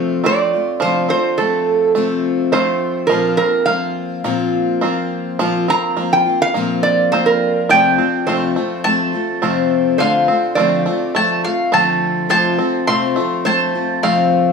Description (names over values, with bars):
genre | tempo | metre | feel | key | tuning
acoustic folk duo or small band | 104 BPM | 4/4 | straight | unclear | A4 = 440 Hz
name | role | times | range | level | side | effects
picked steel-string acoustic guitar | accompaniment | 0.0-14.5 s | F2 to F4 | -19 LUFS | left 5 dB | none
bluegrass banjo | arpeggios | 0.0-14.5 s | D3 to F4 | -23 LUFS | right 5 dB | none
metal-body resonator slide guitar | second line | 0.3-14.5 s | A4 to Bb5 | -18 LUFS | right 4 dB | none
mandolin | melody | 7.7-14.5 s | F5 to C6 | -16 LUFS | equal | none
room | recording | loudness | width
moderate studio reverb, RT60 0.6 s | studio reverb | -14 LUFS | side -5 dB against mid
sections
0.0-7.7 A section; 7.7-14.5 B section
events
resonator guitar played with a steel bar solo 0.0-7.7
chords
0.0 F/C; 3.1 Bbsus2; 7.7 F; 10.0 Dm7; 12.3 F